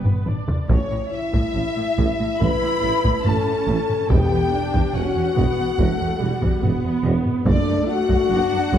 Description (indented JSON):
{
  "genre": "cinematic, epic orchestral film score",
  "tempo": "71 BPM",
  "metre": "4/4",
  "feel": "straight",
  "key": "A mixolydian",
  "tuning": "A4 = 444 Hz",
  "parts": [
    { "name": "dark symphonic viola section", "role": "accompaniment", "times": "0.0-8.8 s", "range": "G3 to D5", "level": "-27 LUFS", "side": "right 2 dB", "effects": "none" },
    { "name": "mellow French horn section", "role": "sustained chords", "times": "0.0-8.8 s", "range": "D3 to B4", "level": "-24 LUFS", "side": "left 4 dB", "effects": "none" },
    { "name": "rich chamber double bass section", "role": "bass", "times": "0.0-8.8 s", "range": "E1 to A1", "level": "-28 LUFS", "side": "right 4 dB", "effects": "none" },
    { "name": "warm studio cello section", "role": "bass", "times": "0.0-8.8 s", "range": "E2 to A2", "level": "-27 LUFS", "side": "right 3 dB", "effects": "none" },
    { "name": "taiko ensemble", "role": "drums", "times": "0.1-8.8 s", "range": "none", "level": "-23 LUFS", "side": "equal", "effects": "none" },
    { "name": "warm symphonic violin section", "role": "melody", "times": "0.7-8.8 s", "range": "C#5 to B5", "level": "-32 LUFS", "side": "left 2 dB", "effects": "none" },
    { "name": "warm symphonic violin section", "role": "second line", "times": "0.7-8.8 s", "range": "C#5 to B5", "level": "-28 LUFS", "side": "left 3 dB", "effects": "none" },
    { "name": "mellow tuba", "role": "bass", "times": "0.7-8.8 s", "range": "E1 to A1", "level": "-29 LUFS", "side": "right 3 dB", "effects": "none" },
    { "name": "timpani", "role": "percussion", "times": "4.1-5.3 s", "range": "E2", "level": "-26 LUFS", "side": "equal", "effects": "none" }
  ],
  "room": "moderate concert hall reverb, RT60 2.2 s",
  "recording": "none",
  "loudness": "-18 LUFS",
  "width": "side -10 dB against mid",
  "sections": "0.7-8.8 A section",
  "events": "drum fill 0.0-0.7",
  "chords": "0.0 G; 0.7 A; 4.1 Emadd9; 7.5 Bm7/F# (rootless)"
}